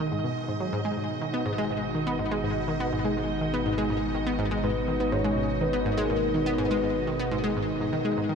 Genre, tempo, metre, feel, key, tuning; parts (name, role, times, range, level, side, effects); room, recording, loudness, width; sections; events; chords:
ambient, sequencer-driven space music; 123 BPM; 4/4; straight; G# minor; A4 = 443 Hz
evolving wavetable pad; sustained chords; 0.0-8.3 s; B2 to G#4; -30 LUFS; equal; chorus, built-in reverb, shimmer reverb
analog pluck; riff; 0.0-8.3 s; G#2 to B3; -29 LUFS; left 1 dB; chorus, shimmer reverb, ping-pong delay
round analog bass; bass; 0.0-8.3 s; G#1; -37 LUFS; equal
bubbling stepped-filter texture; texture; 0.0-8.3 s; D#5; -36 LUFS; right 6 dB; chorus, built-in reverb, shimmer reverb
soft octave-layered synth lead; melody; 4.6-7.8 s; A#4 to C#5; -30 LUFS; left 2 dB; chorus, phaser, shimmer reverb, ping-pong delay
wet huge ambient reverb, RT60 7.6 s; cassette tape; -25 LUFS; side -6 dB against mid
0.0-8.3 A section
fade-in on ambient pad 0.0-8.3; fade-in on analog synth bass 0.0-8.3
0.0 G#m